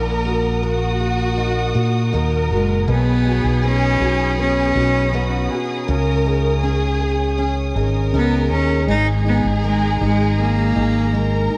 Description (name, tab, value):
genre	pop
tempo	80 BPM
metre	4/4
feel	straight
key	B major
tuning	A4 = 436 Hz
part	warm studio violin section	second line	0.0-11.6 s	F#4 to A#4	-27 LUFS	equal	digital delay
part	felt-muted upright piano	accompaniment	0.0-11.6 s	G#3 to G#4	-27 LUFS	equal	none
part	warm studio string section	sustained chords	0.0-11.6 s	A#4 to D#6	-33 LUFS	equal	none
part	picked steel-string acoustic guitar	arpeggios	0.0-11.6 s	G#2 to B4	-29 LUFS	equal	none
part	mellow fretless electric bass	bass	0.0-11.5 s	F#1 to A#2	-22 LUFS	equal	none
part	bright cello	melody	2.5-11.5 s	G#3 to D#4	-23 LUFS	equal	none
room	light reverb, small room reverb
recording	dark, warm production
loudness	-18 LUFS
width	mono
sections	0.0-11.6 A section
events	none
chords	0.0 D#m/A#; 2.9 Badd9; 5.9 C#sus2; 8.9 G#sus2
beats	0.64 1.39 2.14 | 2.89 3.64 4.39 5.14 | 5.89 6.64 7.39 8.14 | 8.89 9.64 10.39 11.14